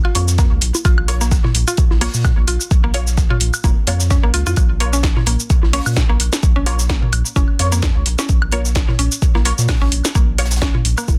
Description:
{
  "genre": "minimal techno",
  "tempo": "129 BPM",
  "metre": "4/4",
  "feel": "swing 55% on 16ths",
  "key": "Bb minor",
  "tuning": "A4 = 445 Hz",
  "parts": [
    { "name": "mallet-like synth pluck", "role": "riff", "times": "0.0-11.0 s", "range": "Bb3 to F4", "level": "-28 LUFS", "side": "equal", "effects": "chorus, sidechain pumping, tape echo" },
    { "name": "deep reggae drum kit", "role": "drums", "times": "0.1-11.2 s", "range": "hi-hat, snare drum", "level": "-35 LUFS", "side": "equal", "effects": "none" },
    { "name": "filtered dub chord stab", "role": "stabs", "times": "0.2-10.5 s", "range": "Bb3 to Db5", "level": "-29 LUFS", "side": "equal", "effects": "phaser, ensemble chorus, tape echo" },
    { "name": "saturated sub bass", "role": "bass", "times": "0.2-11.2 s", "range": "F1 to Bb2", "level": "-21 LUFS", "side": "equal", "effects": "sidechain pumping" },
    { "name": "techno drum kit", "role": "drums", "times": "0.2-11.2 s", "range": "hi-hat, shaker, snare drum", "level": "-24 LUFS", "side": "equal", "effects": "none" },
    { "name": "electronic kick drum", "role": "drums", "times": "0.4-11.2 s", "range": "none", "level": "-18 LUFS", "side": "equal", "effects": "overdrive" },
    { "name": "electronic bongos, woodblock and toms", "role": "percussion", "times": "0.7-11.2 s", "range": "none", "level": "-26 LUFS", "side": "equal", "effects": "tape echo" }
  ],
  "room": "little or no reverb",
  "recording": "dense, heavily limited modern master",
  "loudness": "-16 LUFS",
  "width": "mono",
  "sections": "0.0-11.2 A section",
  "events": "none",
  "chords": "0.0 Bbm"
}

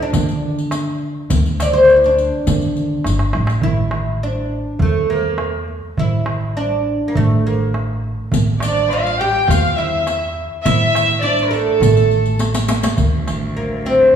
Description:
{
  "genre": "Arabic maqam ensemble",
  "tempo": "103 BPM",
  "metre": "4/4",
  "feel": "straight",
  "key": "D maqam bayati, A maqam hijaz from 3.6 s",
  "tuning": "A4 = 440 Hz",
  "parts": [
    { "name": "oud", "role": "melody", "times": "0.0-14.2 s", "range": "A3 to D5", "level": "-18 LUFS", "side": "equal", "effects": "none" },
    { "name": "upright bass", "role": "bass", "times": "0.1-14.2 s", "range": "G1 to D3", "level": "-20 LUFS", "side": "equal", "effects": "none" },
    { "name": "darbuka", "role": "percussion", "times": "0.1-13.8 s", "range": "none", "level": "-23 LUFS", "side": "right 3 dB", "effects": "none" },
    { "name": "riq", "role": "percussion", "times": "0.1-3.6, 8.3-13.9 s", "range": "none", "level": "-25 LUFS", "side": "left 3 dB", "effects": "none" },
    { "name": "warm studio violin section", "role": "second line", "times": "8.6-12.4 s", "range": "A4 to G5", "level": "-18 LUFS", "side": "left 1 dB", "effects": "none" },
    { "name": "rich cello", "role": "drone", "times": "13.0-14.2 s", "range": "D2", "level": "-25 LUFS", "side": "right 1 dB", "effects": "none" }
  ],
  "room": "wet recital hall reverb, RT60 1.8 s",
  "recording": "heard from further back in the room, small room ambience",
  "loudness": "-15 LUFS",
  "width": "side -8 dB against mid",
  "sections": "0.0-3.6 A section; 3.6-13.0 B section; 13.0-14.2 C section",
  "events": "drum fill 3.1-3.6, 12.4-13.0",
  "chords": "none"
}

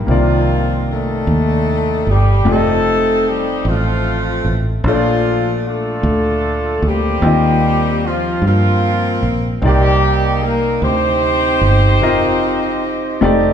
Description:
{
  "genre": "slow gospel",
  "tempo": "50 BPM (dotted quarters)",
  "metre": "6/8",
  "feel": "straight",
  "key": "unclear",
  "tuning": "A4 = 440 Hz",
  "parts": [
    { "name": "dark horn section", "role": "melody", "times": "0.0-13.5 s", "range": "F3 to C5", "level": "-17 LUFS", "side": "equal", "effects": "none" },
    { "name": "warm concert grand piano", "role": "accompaniment", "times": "0.0-13.5 s", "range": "Bb2 to Eb5", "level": "-19 LUFS", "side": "left 2 dB", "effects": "none" },
    { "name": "fingered electric bass", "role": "bass", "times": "0.0-13.5 s", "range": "F1 to G2", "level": "-17 LUFS", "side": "right 1 dB", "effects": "none" }
  ],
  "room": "wet recital hall reverb, RT60 1.4 s",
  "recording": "recorded in a church or concert hall",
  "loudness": "-13 LUFS",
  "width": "side -8 dB against mid",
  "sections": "0.0-13.5 A section",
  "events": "none",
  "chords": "0.1 Cm11; 2.5 F9; 4.9 Bbmaj7; 7.2 Eb69; 9.6 Cm9; 12.0 F7sus4"
}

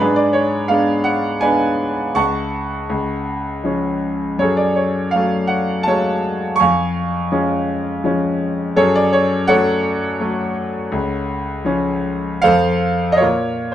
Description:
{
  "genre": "classical, lyrical solo piano",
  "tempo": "82 BPM",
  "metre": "3/4",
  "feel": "rubato",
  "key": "F# harmonic minor",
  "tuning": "A4 = 442 Hz",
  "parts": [
    { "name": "clear grand piano", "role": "solo", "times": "0.0-13.7 s", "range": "C#2 to C#6", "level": "-16 LUFS", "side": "equal", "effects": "none" }
  ],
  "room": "wet studio reverb, RT60 0.6 s",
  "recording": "heard from further back in the room",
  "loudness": "-16 LUFS",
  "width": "side -11 dB against mid",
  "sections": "0.0-13.2 A section",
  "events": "none",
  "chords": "0.0 G#dim; 2.2 F#m/C#; 2.9 C#; 4.4 F#madd9; 6.6 C#/E#; 8.8 F#madd9; 10.9 C#; 12.4 F; 13.2 Bbm"
}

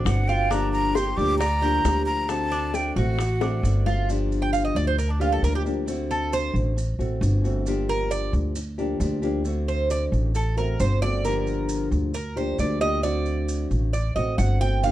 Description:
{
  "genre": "latin, Cuban son and guajira",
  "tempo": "134 BPM",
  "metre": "4/4",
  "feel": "straight",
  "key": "G minor",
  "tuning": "A4 = 441 Hz",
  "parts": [
    { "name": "nylon-string guitar", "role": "accompaniment", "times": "0.0-14.9 s", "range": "D3 to G4", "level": "-28 LUFS", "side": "left 2 dB", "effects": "none" },
    { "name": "Cuban tres", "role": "arpeggios", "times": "0.0-14.9 s", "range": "D4 to G5", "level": "-27 LUFS", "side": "right 4 dB", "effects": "none" },
    { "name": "upright bass", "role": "bass", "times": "0.0-14.9 s", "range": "G1 to D2", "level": "-24 LUFS", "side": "equal", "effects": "none" },
    { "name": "breathy jazz flute", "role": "melody", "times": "0.1-3.8 s", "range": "F#5 to D6", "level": "-26 LUFS", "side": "equal", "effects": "none" },
    { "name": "bongos", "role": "percussion", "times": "0.1-4.0 s", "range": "none", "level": "-31 LUFS", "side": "left 7 dB", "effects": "none" },
    { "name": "maracas", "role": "percussion", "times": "0.1-14.9 s", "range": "none", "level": "-43 LUFS", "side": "right 4 dB", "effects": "none" }
  ],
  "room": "light reverb",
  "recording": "dark, warm production",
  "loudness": "-21 LUFS",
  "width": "side -14 dB against mid",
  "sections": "0.0-4.1 A section; 4.1-14.9 B section",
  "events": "drum fill 3.4-4.1; Cuban tres solo 4.1-14.9",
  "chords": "0.0 D7; 0.5 Gm7; 2.3 D7; 4.1 Gm7; 5.9 D7; 7.7 Gm7; 9.5 D7; 11.2 Gm7; 13.0 D7"
}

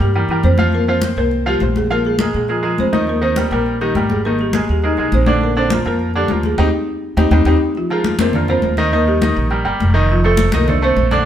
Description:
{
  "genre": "latin, salsa",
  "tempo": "205 BPM",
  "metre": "4/4",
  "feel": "straight",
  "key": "Eb major",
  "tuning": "A4 = 440 Hz",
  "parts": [
    { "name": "folk marimba with soft mallets", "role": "melody", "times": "0.0-11.3 s", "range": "E3 to Eb5", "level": "-18 LUFS", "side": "equal", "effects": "none" },
    { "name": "bright upright piano", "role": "accompaniment", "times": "0.0-11.2 s", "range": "C3 to F5", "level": "-20 LUFS", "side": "right 1 dB", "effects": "none" },
    { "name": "upright bass", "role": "bass", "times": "0.0-11.3 s", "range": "F1 to Bb2", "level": "-18 LUFS", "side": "equal", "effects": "none" },
    { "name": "congas", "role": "percussion", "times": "0.0-11.3 s", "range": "none", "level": "-21 LUFS", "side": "left 4 dB", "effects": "none" }
  ],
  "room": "moderate stone room reverb, RT60 1.1 s",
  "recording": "band playing live in one room",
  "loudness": "-14 LUFS",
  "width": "side -10 dB against mid",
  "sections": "0.0-7.8 A section; 7.8-11.3 B section",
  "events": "band accent 6.6-7.8; drum fill 7.2-7.8",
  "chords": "0.0 C7; 0.7 Fsus2; 1.9 Bb5; 3.1 Eb; 4.2 Absus2; 5.4 Bb; 6.6 Eb6; 7.8 Bbsus2; 8.9 Eb; 10.1 F7"
}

